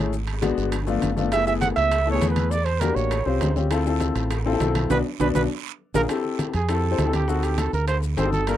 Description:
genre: Afro-Cuban jazz.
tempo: 201 BPM.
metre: 4/4.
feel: straight.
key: unclear.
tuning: A4 = 440 Hz.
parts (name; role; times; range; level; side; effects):
warm baby grand piano; accompaniment; 0.0-8.6 s; G#3 to C5; -25 LUFS; left 6 dB; none.
deep dub fingered electric bass; bass; 0.0-8.6 s; F#1 to F2; -25 LUFS; right 1 dB; none.
bongos; percussion; 0.1-8.6 s; none; -34 LUFS; left 6 dB; none.
congas; percussion; 0.1-8.6 s; none; -30 LUFS; equal; none.
guiro; percussion; 0.1-8.6 s; none; -41 LUFS; right 21 dB; none.
maracas; percussion; 0.1-8.6 s; none; -43 LUFS; left 18 dB; none.
timbales; percussion; 0.3-8.6 s; none; -33 LUFS; right 8 dB; none.
warm trumpet; melody; 1.3-8.6 s; F#4 to F#5; -24 LUFS; right 5 dB; none.
room: light reverb.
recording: dry, close 1970s-style studio recording.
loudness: -20 LUFS.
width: side -12 dB against mid.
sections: 0.0-6.1 A section; 6.1-8.6 B section.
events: drum fill 0.1-1.3, 4.9-6.1; band accent 4.9-6.1; trumpet solo 6.1-8.6.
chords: 0.1 G#m7b5; 0.7 G9; 1.3 F#m11; 2.5 Em7b5; 3.1 A7alt; 3.7 Dm9; 4.9 Bm; 5.5 Bb5; 6.1 Fmaj7; 7.3 D7b9.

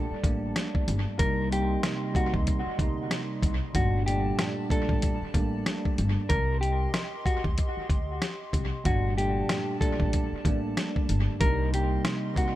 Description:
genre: hip hop, boom-bap hip-hop.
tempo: 94 BPM.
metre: 4/4.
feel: swing 59% on 16ths.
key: G minor.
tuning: A4 = 440 Hz.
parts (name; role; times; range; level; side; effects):
mellow electric guitar; melody; 0.0-12.5 s; F#4 to Bb4; -33 LUFS; left 1 dB; dub echo.
bell-like tine electric piano; accompaniment; 0.0-12.6 s; Bb2 to Eb4; -32 LUFS; right 2 dB; cassette tape, dub echo.
hollow soft pad; sustained chords; 0.0-12.6 s; G3 to C6; -40 LUFS; equal; chorus.
upright bass; bass; 0.1-12.0 s; G1 to D2; -29 LUFS; equal; none.
dusty soul sampler-style drum kit; drums; 0.2-12.5 s; hi-hat, kick drum, rim click, snare drum; -28 LUFS; equal; dub echo.
room: little or no reverb.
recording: echo-heavy mix.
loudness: -25 LUFS.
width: side -14 dB against mid.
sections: 0.0-12.6 A section.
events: none.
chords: 0.0 Gmadd9; 1.2 Cm7; 3.7 Gmadd9; 6.3 Cm; 8.9 Gmadd9; 11.4 Cm7.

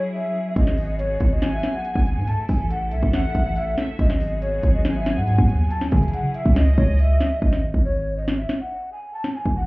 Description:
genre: hip hop, trap.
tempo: 140 BPM.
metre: 4/4.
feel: half-time.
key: G# phrygian.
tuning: A4 = 440 Hz.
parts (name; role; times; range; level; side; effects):
mellow hollow jazz flute; melody; 0.0-9.7 s; C#5 to A5; -27 LUFS; equal; digital delay.
clear studio string section; sustained chords; 0.0-7.4 s; C#3 to A4; -32 LUFS; left 1 dB; none.
hard-hitting 808-style bass; bass; 0.6-9.7 s; G#1 to C#3; -21 LUFS; equal; none.
trap drum kit; drums; 0.6-9.6 s; hi-hat, kick drum, snare drum; -20 LUFS; equal; none.
warm studio violin section; second line; 1.4-7.4 s; D#5 to G#5; -34 LUFS; equal; digital delay.
room: light reverb, studio reverb.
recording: heard muffled through a wall, club reverb, EQ.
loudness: -19 LUFS.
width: side -22 dB against mid.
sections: 0.0-7.4 A section; 7.4-9.7 B section.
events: break 7.4-9.7.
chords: 0.0 C#m; 0.6 G#m7; 2.3 A; 4.0 G#m7; 5.7 C#madd9; 7.4 G#5; 9.1 A5.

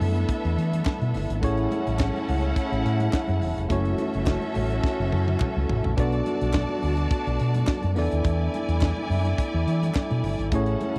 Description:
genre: disco.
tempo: 106 BPM.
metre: 4/4.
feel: straight.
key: unclear.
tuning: A4 = 437 Hz.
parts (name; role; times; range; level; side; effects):
clear studio string section; second line; 0.0-11.0 s; B3 to A5; -35 LUFS; equal; none.
tine electric piano; accompaniment; 0.0-11.0 s; A3 to D5; -33 LUFS; equal; overdrive.
warm French horn section; sustained chords; 0.0-11.0 s; B2 to F#4; -34 LUFS; equal; none.
fingered electric bass; bass; 0.0-11.0 s; E1 to E3; -27 LUFS; equal; none.
tight funk drum kit; drums; 0.0-11.0 s; hi-hat, kick drum, snare drum, toms; -28 LUFS; equal; none.
congas; percussion; 0.0-10.9 s; none; -40 LUFS; equal; none.
group handclap; percussion; 0.8-10.1 s; none; -44 LUFS; equal; none.
room: little or no reverb.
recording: dry, close 1970s-style studio recording.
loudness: -25 LUFS.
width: mono.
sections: 0.0-11.0 A section.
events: drum fill 4.8-6.0.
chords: 0.0 E7sus4; 1.4 Amaj7; 3.7 F#m7; 6.0 Bm7; 8.0 E7sus4.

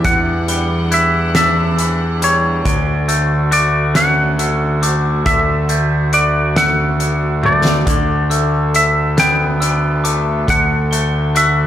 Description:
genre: post-rock.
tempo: 46 BPM (dotted quarters).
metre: 6/8.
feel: straight.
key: unclear.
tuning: A4 = 445 Hz.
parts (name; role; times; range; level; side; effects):
twangy electric guitar; melody; 0.0-11.7 s; C#5 to G5; -17 LUFS; equal; analog delay.
rich chamber string section; sustained chords; 0.0-11.7 s; D3 to F#5; -27 LUFS; right 2 dB; none.
glockenspiel with soft plastic mallets; arpeggios; 0.0-11.7 s; D6 to G7; -24 LUFS; right 4 dB; analog delay.
twangy electric guitar; arpeggios; 0.0-11.7 s; E2 to F#4; -22 LUFS; left 4 dB; analog delay.
fuzz picked electric bass; bass; 0.0-11.7 s; D2 to E2; -17 LUFS; equal; overdrive.
loose indie drum kit; drums; 0.0-11.6 s; hi-hat, kick drum, snare drum, toms; -20 LUFS; equal; none.
room: light reverb, studio reverb.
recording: none.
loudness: -12 LUFS.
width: side -11 dB against mid.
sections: 0.0-11.7 A section.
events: drum fill 7.4-7.9.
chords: 0.0 Em7; 2.7 Dmaj7; 7.9 Bm7/D.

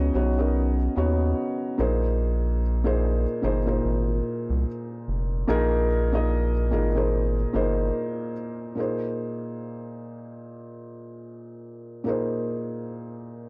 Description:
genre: contemporary R&B.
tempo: 73 BPM.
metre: 4/4.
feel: swing 58% on 16ths.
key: unclear.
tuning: A4 = 444 Hz.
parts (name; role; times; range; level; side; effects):
felt-muted upright piano; accompaniment; 0.0-13.5 s; Bb2 to Eb5; -29 LUFS; equal; none.
round analog bass; bass; 0.0-7.9 s; F1 to Eb2; -27 LUFS; equal; none.
room: studio ambience.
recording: dry, gritty hardware recording, transformer saturation.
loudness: -26 LUFS.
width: mono.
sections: 0.0-8.8 A section; 8.8-13.5 B section.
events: none.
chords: 0.0 Db9sus4; 1.8 Bb9sus4.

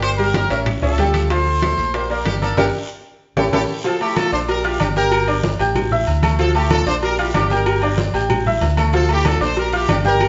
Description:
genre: latin, salsa.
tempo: 189 BPM.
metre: 4/4.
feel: straight.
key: D minor.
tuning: A4 = 445 Hz.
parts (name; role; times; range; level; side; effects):
brilliant horn section; melody; 0.0-3.6 s; D4 to C5; -24 LUFS; equal; none.
bright baby grand piano; accompaniment; 0.0-10.3 s; F3 to G6; -23 LUFS; equal; none.
fingered electric bass; bass; 0.0-10.3 s; G1 to D2; -23 LUFS; equal; none.
bongos and cowbell; percussion; 0.0-10.3 s; none; -30 LUFS; equal; none.
claves; percussion; 0.0-10.3 s; none; -37 LUFS; equal; none.
congas; percussion; 0.0-10.3 s; none; -27 LUFS; equal; none.
guiro; percussion; 0.0-10.3 s; none; -38 LUFS; equal; none.
timbales and agogo bells; percussion; 0.0-10.3 s; none; -29 LUFS; equal; none.
clear horn section; melody; 3.9-10.3 s; D4 to C5; -23 LUFS; equal; none.
room: wet stone room reverb, RT60 1.0 s.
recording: band playing live in one room, nothing above 7.7 kHz.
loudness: -18 LUFS.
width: mono.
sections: 0.0-3.9 A section; 3.9-10.3 B section.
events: band accent 2.6-3.9.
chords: 0.0 Gm; 0.7 A7; 1.3 Dm7; 1.9 Gm; 3.2 A7; 3.9 Dm; 4.5 Bb6; 5.1 Gm; 5.8 A5; 6.4 Dm; 7.0 Bb6; 7.7 Gm; 8.3 A5; 8.9 Dm; 9.6 Bb6.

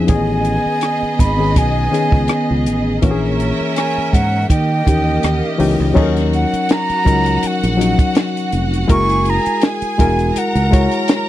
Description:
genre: lush 1970s-style soul.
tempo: 82 BPM.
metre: 4/4.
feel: swing 54% on 16ths.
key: unclear.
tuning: A4 = 438 Hz.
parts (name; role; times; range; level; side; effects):
rich studio string section; second line; 0.0-11.3 s; A#3 to A#5; -23 LUFS; right 3 dB; none.
barky reed electric piano; accompaniment; 0.0-11.3 s; D#3 to C#5; -19 LUFS; left 3 dB; overdrive.
fingered electric bass; bass; 0.0-10.9 s; E1 to D#3; -18 LUFS; right 1 dB; none.
concert flute; melody; 0.1-11.1 s; F#5 to C#6; -20 LUFS; right 1 dB; none.
compact cocktail drum kit; drums; 0.1-11.3 s; crash cymbal, hi-hat, kick drum, rim click, snare drum; -16 LUFS; equal; none.
room: little or no reverb.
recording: dry, close 1970s-style studio recording.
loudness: -13 LUFS.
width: side -14 dB against mid.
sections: 0.0-6.0 A section; 6.0-11.3 B section.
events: none.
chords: 0.1 Amaj9#11; 3.0 A#m7b5; 4.5 D#7b9; 6.0 D#m7; 8.9 F#9.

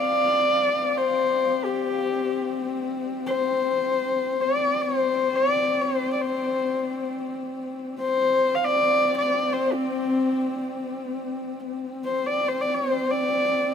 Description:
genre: mongolian traditional, Mongolian folk.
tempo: free time.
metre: none.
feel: none.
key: unclear.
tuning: A4 = 439 Hz.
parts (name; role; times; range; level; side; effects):
dark horsehead fiddle; melody; 0.0-13.7 s; C4 to F5; -23 LUFS; left 2 dB; none.
dark horsehead fiddle; drone; 0.0-13.7 s; C4; -29 LUFS; left 2 dB; none.
room: moderate huge ambient reverb, RT60 8.1 s.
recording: minimal, uncompressed stereo recording.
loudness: -22 LUFS.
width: side -7 dB against mid.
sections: 0.0-11.7 A section; 11.7-13.7 A section.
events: none.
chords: none.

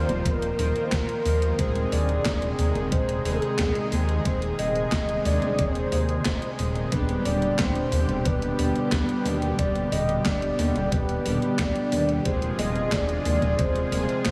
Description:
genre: synthwave.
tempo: 90 BPM.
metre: 4/4.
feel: straight.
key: unclear.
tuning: A4 = 438 Hz.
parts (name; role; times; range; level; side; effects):
soft octave-layered synth lead; melody; 0.0-14.3 s; Ab4 to Eb5; -31 LUFS; equal; chorus, tape echo.
warm analog pad; sustained chords; 0.0-14.3 s; B2 to C5; -33 LUFS; equal; chorus, sidechain pumping.
analog synth brass; stabs; 0.0-14.3 s; D3 to Bb4; -34 LUFS; equal; chorus, tape echo.
chorused synth bass; bass; 0.0-14.3 s; Eb1 to Eb2; -29 LUFS; equal; none.
gated 80s digital drum machine; drums; 0.1-14.3 s; handclaps, hi-hat, snare drum; -35 LUFS; equal; gated reverb, gated reverb snare.
electronic kick drum; drums; 0.3-14.3 s; none; -30 LUFS; equal; none.
room: moderate huge ambient reverb, RT60 8.3 s.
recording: dreamy mix soaked in reverb, small room ambience.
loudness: -25 LUFS.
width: mono.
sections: 0.0-14.3 A section.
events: none.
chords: 0.0 Ebsus2; 1.6 Ab/Eb; 6.9 G/Eb; 12.3 Fm/Eb.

